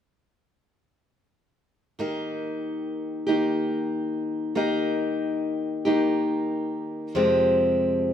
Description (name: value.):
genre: folk.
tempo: 46 BPM (dotted quarters).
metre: 6/8.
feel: straight.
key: Eb major.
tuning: A4 = 441 Hz.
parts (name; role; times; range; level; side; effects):
picked steel-string acoustic guitar; accompaniment; 2.0-8.1 s; F2 to G4; -23 LUFS; left 1 dB; none.
room: wet large studio reverb, RT60 1.5 s.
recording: minimal, uncompressed stereo recording.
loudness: -23 LUFS.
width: side -9 dB against mid.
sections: 2.0-8.1 A section.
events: none.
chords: 2.0 Eb; 7.2 Fmadd9.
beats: | 2.00 3.29 | 4.58 5.86 | 7.15.